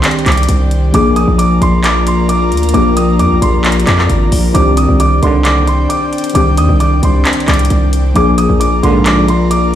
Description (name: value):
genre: hip hop, trap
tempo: 133 BPM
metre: 4/4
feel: half-time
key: C minor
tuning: A4 = 439 Hz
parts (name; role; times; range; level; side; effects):
- dark baby grand piano; melody; 0.0-9.8 s; C6 to Eb6; -17 LUFS; right 1 dB; low-pass filter, ping-pong delay
- warbly lo-fi synth keys; accompaniment; 0.0-9.8 s; Eb3 to Ab4; -16 LUFS; left 2 dB; chorus, low-pass filter
- airy breathy pad; sustained chords; 0.0-9.8 s; Eb3 to Bb5; -20 LUFS; left 2 dB; chorus
- hard-hitting 808-style bass; bass; 0.0-9.8 s; Ab1 to F2; -12 LUFS; equal; none
- trap drum kit; drums; 0.0-9.6 s; handclaps, hi-hat; -18 LUFS; equal; none
- mellow brass ensemble; stabs; 5.2-5.7, 8.8-9.3 s; Eb2 to D3; -17 LUFS; right 5 dB; none
room: little or no reverb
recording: played on a big sound system in a bare room, stone room reverb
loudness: -9 LUFS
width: side -11 dB against mid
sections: 0.0-9.8 A section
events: none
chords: 0.0 Cmadd9; 0.9 Bb7; 4.5 Cmadd9; 8.2 Bb7